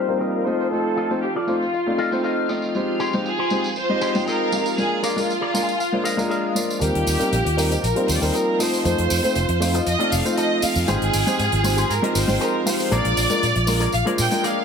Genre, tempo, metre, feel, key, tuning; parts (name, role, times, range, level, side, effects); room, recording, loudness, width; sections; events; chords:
nu-disco, nu disco; 118 BPM; 4/4; straight; Eb major; A4 = 438 Hz
warm symphonic violin section; melody; 0.0-14.6 s; F4 to G5; -24 LUFS; equal; ping-pong delay
dark concert grand piano; accompaniment; 0.0-14.6 s; G3 to G5; -24 LUFS; left 1 dB; low-pass filter
string machine, full ensemble; sustained chords; 0.0-14.6 s; F4 to F5; -27 LUFS; right 1 dB; ensemble chorus
electric guitar with an envelope filter; riff; 0.0-14.6 s; F4 to Ab5; -29 LUFS; left 3 dB; lush chorus, low-pass filter
tambourine; percussion; 0.1-14.5 s; -30 LUFS; right 1 dB
fingered electric bass; bass; 6.8-14.3 s; F1 to Bb2; -23 LUFS; right 1 dB
hi-hat; drums; 6.8-14.6 s; -30 LUFS; left 4 dB
light reverb, studio reverb; low-pass filter; -18 LUFS; side -6 dB against mid
0.0-6.8 A section; 6.8-14.6 B section
filter sweep on clean electric guitar 0.0-6.8, 6.8-14.6; filter sweep 0.0-6.8; clean electric guitar fill 1.7-2.8, 5.3-6.8; build-up 6.8-14.6; filter sweep on grand piano 6.8-14.6; filter sweep on string machine 6.8-14.6
0.5 F7; 2.8 Abmaj7; 4.8 Bb7; 6.8 Eb6; 8.6 F7; 10.9 Abmaj7; 12.9 Bb7